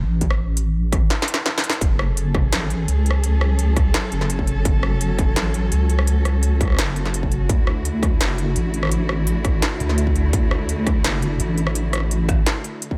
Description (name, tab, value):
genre	half-time drum and bass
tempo	169 BPM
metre	4/4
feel	half-time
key	F# minor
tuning	A4 = 438 Hz
part	deep soft wobble bass	bass	0.0-12.4 s	F#1 to D2	-23 LUFS	equal	chorus
part	electronic kick drum	drums	0.2-13.0 s	none	-23 LUFS	equal	distortion
part	industrial drum kit	drums	0.2-12.9 s	hi-hat, rim click, snare drum	-27 LUFS	equal	none
part	warm studio cello section	sustained chords	1.8-13.0 s	D3 to A4	-30 LUFS	equal	vintage 12-bit sampler grit, sidechain pumping
room	digital ambience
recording	none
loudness	-20 LUFS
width	mono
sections	0.0-1.8 A section; 1.8-13.0 A section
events	drop 0.0-1.8, 1.8-13.0; drum fill 1.1-1.8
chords	0.0 N.C.; 1.8 F#m; 7.5 D